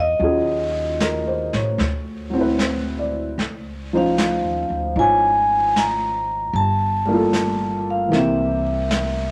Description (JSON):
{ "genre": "jazz ballad", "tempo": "76 BPM", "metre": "4/4", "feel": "swing 69% on 8ths", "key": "unclear", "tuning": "A4 = 440 Hz", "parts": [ { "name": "vibraphone with medium hard mallets", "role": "melody", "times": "0.0-9.3 s", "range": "Eb5 to Bb5", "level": "-23 LUFS", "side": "equal", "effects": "none" }, { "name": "warm baby grand piano", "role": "accompaniment", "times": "0.0-9.3 s", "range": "E3 to D5", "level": "-24 LUFS", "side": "equal", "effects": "none" }, { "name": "upright bass", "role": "bass", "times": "0.0-9.3 s", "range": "G1 to A2", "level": "-29 LUFS", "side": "equal", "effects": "none" }, { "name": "jazz brush drum kit", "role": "drums", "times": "0.2-9.3 s", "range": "brushed snare drum, hi-hat, snare drum", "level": "-30 LUFS", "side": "equal", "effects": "none" } ], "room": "moderate studio reverb, RT60 0.7 s", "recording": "none", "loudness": "-20 LUFS", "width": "mono", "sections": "0.0-9.3 A section", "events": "none", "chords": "0.2 Ebm11; 1.8 D13; 3.4 Dbmaj9; 6.5 Gm9; 8.1 C7" }